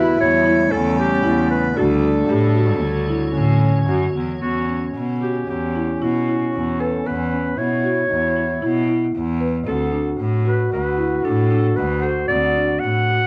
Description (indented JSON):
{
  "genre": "contemporary instrumental, chamber music in an uneven meter",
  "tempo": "114 BPM",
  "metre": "5/4",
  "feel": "straight",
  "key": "E dorian",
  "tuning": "A4 = 440 Hz",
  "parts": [
    { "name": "warm clarinet", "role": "melody", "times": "0.0-13.3 s", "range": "F#4 to F#5", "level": "-25 LUFS", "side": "equal", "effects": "none" },
    { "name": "warm French horn", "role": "second line", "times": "0.0-13.3 s", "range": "C#4 to F#4", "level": "-26 LUFS", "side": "equal", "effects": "none" },
    { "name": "icy glass pad", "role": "sustained chords", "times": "0.0-4.4 s", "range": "C#3 to C#5", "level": "-30 LUFS", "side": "equal", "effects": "chorus, built-in reverb" },
    { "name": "marimba with soft mallets", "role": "arpeggios", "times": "0.0-13.3 s", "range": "D3 to B4", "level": "-26 LUFS", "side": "equal", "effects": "none" },
    { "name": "rich cello", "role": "bass", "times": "0.0-13.3 s", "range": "D2 to B2", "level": "-24 LUFS", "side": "equal", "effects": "none" }
  ],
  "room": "light reverb",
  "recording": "dark, warm production",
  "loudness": "-19 LUFS",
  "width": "mono",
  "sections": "0.0-4.4 A section; 4.4-13.3 B section",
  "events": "none",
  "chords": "0.0 A7/E; 1.8 Dmaj7; 4.4 Esus2; 9.7 D",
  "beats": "0.20 0.72 1.24 | 1.77 2.29 2.82 3.35 3.89 | 4.42 4.95 5.48 6.01 6.53 | 7.05 7.58 8.10 8.62 9.14 | 9.67 10.20 10.72 11.25 11.78 | 12.30 12.83"
}